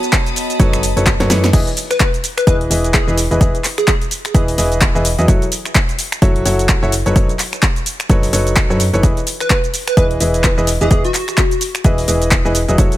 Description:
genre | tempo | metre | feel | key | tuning
piano house | 128 BPM | 4/4 | swing 58% on 16ths | E major | A4 = 440 Hz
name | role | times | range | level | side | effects
warm studio violin section | sustained chords | 0.0-1.5 s | A5 to D#6 | -26 LUFS | left 1 dB | sidechain pumping
punchy analog drum machine | drums | 0.0-13.0 s | crash cymbal, finger snaps, handclaps, hi-hat, shaker, snare drum | -19 LUFS | equal | overdrive
warbly tape-like pad | texture | 0.0-1.5 s | B3 to A5 | -25 LUFS | right 1 dB | chorus, built-in reverb, sidechain pumping
electronic kick drum | drums | 0.1-12.9 s | none | -14 LUFS | equal | overdrive
clear grand piano | riff | 0.6-12.9 s | E3 to D#5 | -19 LUFS | equal | sidechain pumping, digital delay
solid FM bass | bass | 0.6-12.9 s | E1 to F#2 | -18 LUFS | equal | tube saturation, sidechain pumping
plucky unison lead | melody | 1.9-4.0, 9.4-11.7 s | F#4 to B4 | -21 LUFS | equal | lush chorus, cassette tape, digital delay
room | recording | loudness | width
digital ambience | none | -12 LUFS | side -15 dB against mid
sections
0.0-1.5 A section; 1.5-13.0 A section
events
drop 0.0-1.5, 1.5-13.0; drum fill 1.2-1.5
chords
0.0 B9; 1.5 Emaj7; 5.3 F#m7; 6.9 B9/F#; 9.0 Emaj7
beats
0.13 0.59 1.06 | 1.53 2.00 2.47 2.94 | 3.41 3.88 4.34 4.81 | 5.28 5.75 6.22 6.69 | 7.16 7.63 8.10 8.56 | 9.03 9.50 9.97 10.44 | 10.91 11.38 11.85 12.31 | 12.78

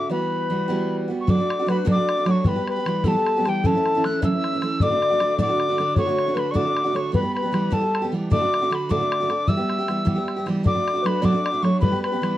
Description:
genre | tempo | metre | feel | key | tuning
celtic folk, Celtic jig | 102 BPM (dotted quarters) | 6/8 | straight | E dorian | A4 = 440 Hz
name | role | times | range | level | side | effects
mellow mid whistle | melody | 0.0-12.4 s | G5 to F#6 | -25 LUFS | left 1 dB | none
baroque flute | second line | 0.0-12.4 s | G4 to E5 | -26 LUFS | left 4 dB | none
picked steel-string acoustic guitar | accompaniment | 0.0-12.4 s | D2 to G4 | -23 LUFS | right 2 dB | none
bodhran | percussion | 1.3-12.3 s | none | -24 LUFS | left 1 dB | none
room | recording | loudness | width
moderate studio reverb, RT60 0.6 s | worn, warbling old tape, cassette tape, warbly pitch drift | -19 LUFS | side -14 dB against mid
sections
0.0-1.3 A section; 1.3-10.7 B section; 10.7-12.4 B section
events
none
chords
0.1 Emadd9; 1.3 Bm7; 2.5 Em; 3.6 F#m7; 4.8 D; 7.1 Em; 8.3 D; 9.5 Em; 10.7 Bm7; 11.8 Em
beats
| 0.10 0.69 | 1.28 1.87 | 2.45 3.04 | 3.62 4.21 | 4.80 5.38 | 5.97 6.55 | 7.14 7.72 | 8.31 8.89 | 9.48 10.06 | 10.65 11.23 | 11.82

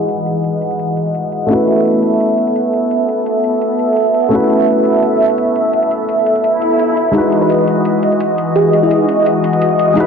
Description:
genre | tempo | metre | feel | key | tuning
liquid drum and bass | 170 BPM | 4/4 | straight | E major | A4 = 438 Hz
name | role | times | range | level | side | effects
dark baby grand piano | accompaniment | 0.0-10.1 s | G#3 to B4 | -16 LUFS | left 1 dB | analog delay
lush unison pad | sustained chords | 0.0-10.1 s | E3 to F#5 | -14 LUFS | equal | chorus
electronic hi-hat | drums | 0.1-10.0 s | none | -42 LUFS | right 1 dB | low-pass filter on hats, low-pass filter on room
swell | sound effects | 6.5-7.1 s | none | -20 LUFS | left 1 dB | none
bell-like FM electric piano | melody | 7.4-9.1 s | E4 to B4 | -17 LUFS | right 1 dB | chorus, tremolo, diffuse ambient delay
room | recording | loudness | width
wet lush hall reverb, RT60 1.8 s | dreamy mix soaked in reverb, low-pass filter | -12 LUFS | side -6 dB against mid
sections
0.0-10.1 A section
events
filter sweep on analog synth pad 0.0-10.1; filter sweep 0.0-10.1; swell 6.5-7.1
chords
0.0 Emaj9; 1.5 B7sus4; 7.1 Emaj9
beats
| 0.09 0.44 0.79 1.15 | 1.50 1.85 2.21 2.56 | 2.91 3.26 3.62 3.97 | 4.32 4.67 5.03 5.38 | 5.73 6.09 6.44 6.79 | 7.15 7.50 7.85 8.21 | 8.56 8.91 9.26 9.62 | 9.97

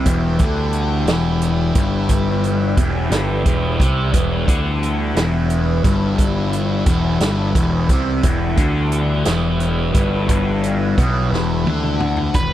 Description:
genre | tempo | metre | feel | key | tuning
psychedelic rock | 59 BPM (dotted quarters) | 6/8 | straight | E minor | A4 = 441 Hz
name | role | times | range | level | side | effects
combo organ | sustained chords | 0.0-12.3 s | E3 to G4 | -28 LUFS | right 4 dB | none
thick fuzz guitar | riff | 0.0-12.3 s | E2 to D3 | -20 LUFS | left 2 dB | distortion, phaser
fuzz picked electric bass | bass | 0.0-12.5 s | E1 to D2 | -20 LUFS | equal | overdrive
vintage drum kit | drums | 0.1-12.5 s | hi-hat, kick drum, snare drum, toms | -19 LUFS | equal | none
octave-fuzz lead guitar | melody | 12.3-12.5 s | B4 | -21 LUFS | right 2 dB | distortion, slapback echo
room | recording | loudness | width
little or no reverb | dry, close 1970s-style studio recording | -15 LUFS | side -12 dB against mid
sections
0.0-12.3 A section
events
drum fill 11.3-12.3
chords
0.0 Em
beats
| 0.07 1.08 | 2.10 3.12 | 4.14 5.16 | 6.19 7.21 | 8.23 9.26 | 10.29 11.32 | 12.35

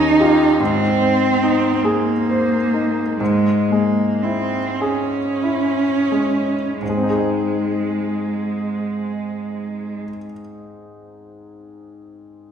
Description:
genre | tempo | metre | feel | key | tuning
classical, slow romantic movement for piano trio | 28-52 BPM (dotted quarters) | 6/8 | rubato | Ab major | A4 = 440 Hz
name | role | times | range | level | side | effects
rich cello | second line | 0.0-10.0 s | Ab3 to Eb4 | -19 LUFS | right 3 dB | none
bright grand piano | accompaniment | 0.0-12.5 s | Eb2 to Eb5 | -21 LUFS | left 2 dB | none
room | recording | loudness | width
wet scoring stage reverb, RT60 1.8 s | heard from further back in the room | -16 LUFS | side -8 dB against mid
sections
0.0-6.8 A section; 6.8-10.7 B section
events
slowing down 0.0-6.8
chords
0.0 Eb9; 0.6 Ab; 3.2 Dbm/Ab; 6.8 Ab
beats
| 0.60 1.84 | 3.20 4.80 | 6.80 8.78

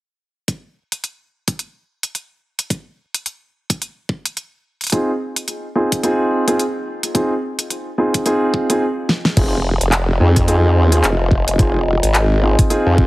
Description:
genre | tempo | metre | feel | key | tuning
glitch hop | 108 BPM | 4/4 | swing 59% on 16ths | F minor pentatonic | A4 = 440 Hz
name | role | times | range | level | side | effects
electronic kick drum | drums | 0.5-13.1 s | none | -17 LUFS | equal | high-pass filter on kick, small room reverb
pop drum kit | drums | 0.5-12.8 s | crash cymbal, handclaps, hi-hat, rim click, snare drum | -20 LUFS | equal | small room reverb
dark grand piano | stabs | 4.9-13.1 s | C4 to Ab4 | -19 LUFS | equal | sidechain pumping, tape echo
formant-sweep wobble bass | bass | 9.4-13.1 s | F1 to F2 | -15 LUFS | equal | chorus, overdrive
warbly tape-like pad | texture | 10.1-13.1 s | F4 to Ab5 | -25 LUFS | left 1 dB | chorus, built-in reverb, sidechain pumping
room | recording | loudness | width
light reverb | heavily compressed radio sound, multiband compression | -16 LUFS | side -18 dB against mid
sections
0.5-9.4 A section; 9.4-13.1 B section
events
break 8.8-9.4; drum fill 9.1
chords
0.5 Fm7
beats
| 0.48 1.04 1.59 2.15 | 2.70 3.26 3.81 4.37 | 4.92 5.48 6.04 6.59 | 7.15 7.70 8.26 8.81 | 9.37 9.93 10.48 11.04 | 11.59 12.15 12.70

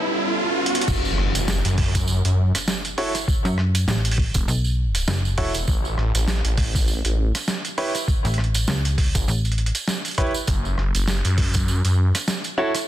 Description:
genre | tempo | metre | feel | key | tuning
glitch hop | 100 BPM | 4/4 | swing 57% on 16ths | F# phrygian | A4 = 439 Hz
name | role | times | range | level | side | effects
warm analog pad | sustained chords | 0.0-0.8 s | G3 to A4 | -28 LUFS | right 1 dB | chorus, sidechain pumping
riser and impact | sound effects | 0.0-3.3 s | none | -25 LUFS | equal | none
boom bap sampler-style drum kit | drums | 0.7-12.9 s | crash cymbal, hi-hat, rim click, snare drum | -27 LUFS | right 1 dB | studio reverb
phased detuned saw bass | bass | 0.9-12.1 s | E1 to F#2 | -21 LUFS | equal | phaser, tube saturation
electronic kick drum | drums | 0.9-11.7 s | none | -22 LUFS | equal | high-pass filter on kick, studio reverb
tambourine | percussion | 0.9-12.9 s | none | -30 LUFS | right 4 dB | none
bright baby grand piano | stabs | 3.0-12.7 s | E4 to C#5 | -26 LUFS | right 1 dB | sidechain pumping, digital delay
slap-like FM bass | bass | 3.4-9.7 s | F#1 to F#2 | -21 LUFS | equal | none
room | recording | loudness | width
digital ambience | dense, heavily limited modern master | -19 LUFS | side -13 dB against mid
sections
0.9-12.9 A section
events
break 0.0-0.9; riser 0.0-0.9; drum fill 0.6-0.9; drop 0.9-12.9; impact 0.9-3.3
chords
0.0 A9; 0.9 F#m7; 5.7 A; 10.5 N.C.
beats
0.28 | 0.88 1.48 2.08 2.68 | 3.28 3.88 4.48 5.08 | 5.68 6.28 6.88 7.48 | 8.08 8.68 9.28 9.88 | 10.48 11.08 11.68 12.28

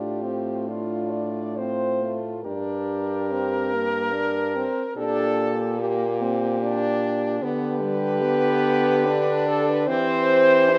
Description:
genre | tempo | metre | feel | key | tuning
classical, lyrical piece for horn quartet | 73 BPM | 3/4 | uneven beats, rubato | unclear | A4 = 441 Hz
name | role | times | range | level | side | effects
warm French horn | melody | 0.0-10.8 s | F4 to D5 | -27 LUFS | equal | none
mellow French horn | second line | 0.0-10.8 s | F4 to G4 | -31 LUFS | equal | none
mellow French horn | accompaniment | 0.0-10.8 s | G3 to E4 | -28 LUFS | equal | none
warm French horn | bass | 0.0-10.8 s | G2 to E3 | -30 LUFS | equal | none
room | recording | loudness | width
wet stone room reverb, RT60 1.3 s | none | -23 LUFS | mono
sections
0.0-10.8 A section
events
none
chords
0.0 F/A; 2.5 Gm; 5.0 Gm/Bb; 7.4 G/D; 9.9 C/E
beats
0.68 1.59 | 2.46 3.30 4.13 | 4.96 5.79 6.61 | 7.42 8.22 9.06 | 9.88 10.72

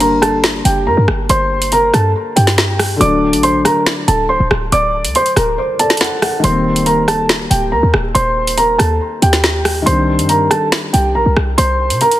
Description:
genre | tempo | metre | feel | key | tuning
hip hop, drill | 140 BPM | 4/4 | half-time | G harmonic minor | A4 = 440 Hz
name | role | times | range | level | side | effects
dark concert grand piano | melody | 0.0-12.2 s | G4 to D6 | -15 LUFS | right 1 dB | low-pass filter, ping-pong delay
felt-muted upright piano | accompaniment | 0.0-12.2 s | D3 to F#5 | -20 LUFS | left 2 dB | low-pass filter
short 808-style bass | bass | 0.0-12.0 s | C1 to C3 | -17 LUFS | equal | none
drill drum kit | drums | 0.0-12.2 s | finger snaps, hi-hat, rim click, snare drum | -16 LUFS | equal | soft clipping on snare
room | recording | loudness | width
light reverb, studio ambience | dense, heavily limited modern master, vinyl crackle | -11 LUFS | side -14 dB against mid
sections
0.0-12.2 A section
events
kick muted 5.6-6.4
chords
0.0 Gm; 3.0 D; 6.4 Eb6; 9.9 Cmadd9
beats
0.01 0.44 0.86 | 1.29 1.72 2.15 2.58 | 3.01 3.44 3.87 4.29 | 4.72 5.15 5.58 6.01 | 6.44 6.87 7.29 7.72 | 8.15 8.58 9.01 9.44 | 9.87 10.29 10.72 11.15 | 11.58 12.01

